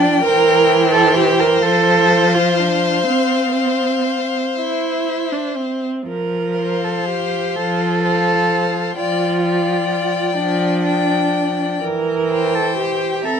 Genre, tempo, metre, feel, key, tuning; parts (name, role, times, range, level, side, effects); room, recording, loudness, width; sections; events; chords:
classical, slow romantic movement for string quartet; 41 BPM (dotted quarters); 6/8; uneven beats, rubato; F major; A4 = 440 Hz
warm violin; melody; 0.0-13.4 s; E5 to Bb5; -23 LUFS; left 8 dB
rich violin; second line; 0.0-13.4 s; C5 to E5; -22 LUFS; left 4 dB
warm viola; accompaniment; 0.0-13.4 s; E3 to E4; -20 LUFS; right 1 dB
dark cello; bass; 0.0-13.4 s; C4 to Bb4; -18 LUFS; right 4 dB
light reverb; dark, warm production; -15 LUFS; side -7 dB against mid
0.0-13.4 A section
0.2 C7/E; 1.6 F; 3.1 F5/C; 4.6 C/E; 6.1 F; 9.0 G5/F; 11.8 C7/E